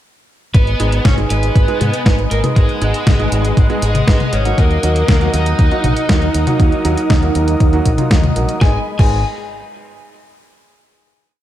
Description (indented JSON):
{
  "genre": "italo disco",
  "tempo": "119 BPM",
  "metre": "4/4",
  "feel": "straight",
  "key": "G# minor",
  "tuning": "A4 = 440 Hz",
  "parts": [
    { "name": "lead guitar through a small cranked amp", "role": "melody", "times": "0.5-9.2 s", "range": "G#3 to G#5", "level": "-20 LUFS", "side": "right 1 dB", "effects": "overdrive, ping-pong delay" },
    { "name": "warm analog pad", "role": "sustained chords", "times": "0.5-8.8 s", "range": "G#3 to D#6", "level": "-25 LUFS", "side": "left 3 dB", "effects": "chorus" },
    { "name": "fingered electric bass with an envelope filter", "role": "bass", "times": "0.5-9.2 s", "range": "G#1 to G#2", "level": "-17 LUFS", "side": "equal", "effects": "tube saturation" },
    { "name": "detuned 8-bit digital drum machine", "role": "drums", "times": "0.5-9.1 s", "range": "crash cymbal, hi-hat, snare drum, toms", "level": "-20 LUFS", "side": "left 2 dB", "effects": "overdrive, small room ambience" },
    { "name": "electronic kick drum", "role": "drums", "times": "0.5-9.1 s", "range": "none", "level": "-13 LUFS", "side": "equal", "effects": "overdrive, small room ambience" },
    { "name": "clear grand piano", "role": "stabs", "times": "0.8-9.2 s", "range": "G#2 to B4", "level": "-23 LUFS", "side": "right 4 dB", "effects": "none" }
  ],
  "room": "light reverb, digital ambience",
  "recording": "dark, warm production",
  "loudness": "-12 LUFS",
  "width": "side -12 dB against mid",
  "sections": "0.5-8.6 verse; 8.6-10.6 final chord",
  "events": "none",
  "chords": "0.5 G#m; 4.6 D#m; 8.6 G#m"
}